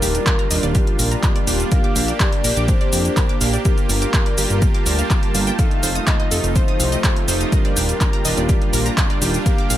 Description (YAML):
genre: progressive house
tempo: 124 BPM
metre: 4/4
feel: straight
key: unclear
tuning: A4 = 440 Hz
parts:
  - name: soft octave-layered synth lead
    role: melody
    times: 0.0-9.8 s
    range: Bb4 to F5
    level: -28 LUFS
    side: left 3 dB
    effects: chorus, tremolo, sidechain pumping, ping-pong delay
  - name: lush unison pad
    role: sustained chords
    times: 0.0-9.8 s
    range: Eb3 to A5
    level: -28 LUFS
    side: left 2 dB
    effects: chorus, sidechain pumping
  - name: wide unison pluck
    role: arpeggios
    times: 0.0-9.8 s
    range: G4 to Eb6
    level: -29 LUFS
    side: equal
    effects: sidechain pumping, digital delay
  - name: soft supersaw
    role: stabs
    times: 0.0-9.8 s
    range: G3 to G4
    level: -25 LUFS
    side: right 4 dB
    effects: sidechain pumping, digital delay
  - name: fat analog bass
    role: bass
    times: 0.0-9.8 s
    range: Eb1 to F2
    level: -21 LUFS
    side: equal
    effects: sidechain pumping
  - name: deep house drum kit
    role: drums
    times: 0.0-9.8 s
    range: handclaps, hi-hat, shaker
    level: -23 LUFS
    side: equal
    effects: overdrive, small room ambience
  - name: electronic kick drum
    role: drums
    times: 0.3-9.6 s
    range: none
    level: -18 LUFS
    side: equal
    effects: overdrive, small room ambience
room: little or no reverb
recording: none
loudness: -15 LUFS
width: side -13 dB against mid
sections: 0.0-9.8 A section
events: none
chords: 0.0 Ebmaj9; 1.7 Bb6; 3.7 Gm7; 5.6 F7; 7.5 Ebmaj9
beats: 0.27 0.75 1.23 | 1.72 2.20 2.69 3.17 | 3.65 4.14 4.62 5.10 | 5.59 6.07 6.56 7.04 | 7.52 8.01 8.49 8.97 | 9.46